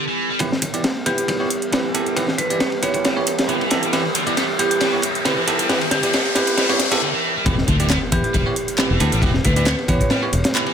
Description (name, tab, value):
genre	breakbeat, breaks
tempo	136 BPM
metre	4/4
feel	swing 54% on 16ths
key	unclear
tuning	A4 = 445 Hz
part	warbly tape-like pad	sustained chords	0.0-10.7 s	E3 to A4	-30 LUFS	right 4 dB	chorus, built-in reverb, vintage 12-bit sampler grit, sidechain pumping
part	high-gain distorted guitar	riff	0.0-10.7 s	D3 to B3	-26 LUFS	equal	distortion, low-pass filter, ping-pong delay
part	bell-like tine electric piano	stabs	0.0-10.7 s	B3 to D5	-24 LUFS	right 3 dB	low-pass filter, ping-pong delay
part	crunchy breakbeat drum kit	drums	0.4-10.7 s	kick drum, ride cymbal, snare drum	-22 LUFS	left 1 dB	high-pass filter on kick, high-pass filter on cymbals, high-pass filter on snare, high-pass filter on room
part	house drum kit	drums	0.4-10.6 s	handclaps, hi-hat	-26 LUFS	right 2 dB	none
part	riser and impact	sound effects	1.9-9.2 s	none	-27 LUFS	left 1 dB	none
part	marimba with hard mallets	melody	1.1-10.1 s	G4 to C#5	-26 LUFS	equal	telephone sound, ping-pong delay
part	fingered electric bass	bass	7.5-10.4 s	E1 to E2	-20 LUFS	left 1 dB	none
room	light reverb, small room ambience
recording	none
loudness	-16 LUFS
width	side -8 dB against mid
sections	0.4-7.5 A section; 7.5-10.7 B section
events	build-up 0.4-7.5; filter sweep on distorted electric guitar 0.4-7.5; riser 1.9-7.0; drum fill 3.9-7.0; break 7.0-7.5; drop 7.5-10.7; impact 7.5-9.2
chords	0.4 Em